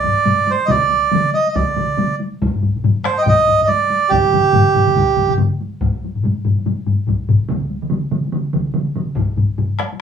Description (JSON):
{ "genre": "japanese traditional, taiko drum ensemble", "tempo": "142 BPM", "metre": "4/4", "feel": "swing 60% on 16ths", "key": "unclear", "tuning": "A4 = 440 Hz", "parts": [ { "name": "melodica", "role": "melody", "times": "0.0-5.3 s", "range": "G4 to G5", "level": "-14 LUFS", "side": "right 4 dB", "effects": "none" }, { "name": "taiko ensemble", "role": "percussion", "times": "0.0-10.0 s", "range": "none", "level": "-25 LUFS", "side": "left 1 dB", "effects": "none" }, { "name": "taiko ensemble", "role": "percussion", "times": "0.0-9.9 s", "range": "none", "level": "-18 LUFS", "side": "left 3 dB", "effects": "none" }, { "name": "taiko ensemble", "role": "percussion", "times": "0.7-9.1 s", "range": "none", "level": "-21 LUFS", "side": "right 1 dB", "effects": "none" }, { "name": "taiko ensemble", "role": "percussion", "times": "0.7-9.3 s", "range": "none", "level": "-25 LUFS", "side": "left 1 dB", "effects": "none" } ], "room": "wet small room ambience, RT60 0.5 s", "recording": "band playing live in one room, small room ambience", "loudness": "-14 LUFS", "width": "side -8 dB against mid", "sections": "0.0-5.8 A section; 5.8-10.0 B section", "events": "speeding up 0.0-10.0", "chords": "none" }